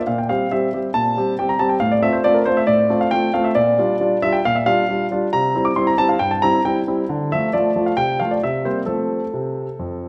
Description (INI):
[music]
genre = classical-period piano sonatina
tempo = 136 BPM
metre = 4/4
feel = straight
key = F major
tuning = A4 = 440 Hz
[part]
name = warm concert grand piano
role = solo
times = 0.0-10.1 s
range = F2 to D6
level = -19 LUFS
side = equal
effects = none
[sound]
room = wet recital hall reverb, RT60 1.7 s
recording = none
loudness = -19 LUFS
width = mono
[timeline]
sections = 0.0-10.1 A section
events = none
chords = 0.1 C7/Bb; 1.8 F/A; 3.6 Gm7/Bb; 5.3 C; 7.1 Dm; 8.0 F/C; 8.4 C7; 8.9 F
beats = | 0.07 0.51 0.94 1.38 | 1.82 2.25 2.69 3.13 | 3.56 4.00 4.44 4.88 | 5.31 5.75 6.20 6.64 | 7.08 7.52 7.97 8.41 | 8.87 9.33 9.79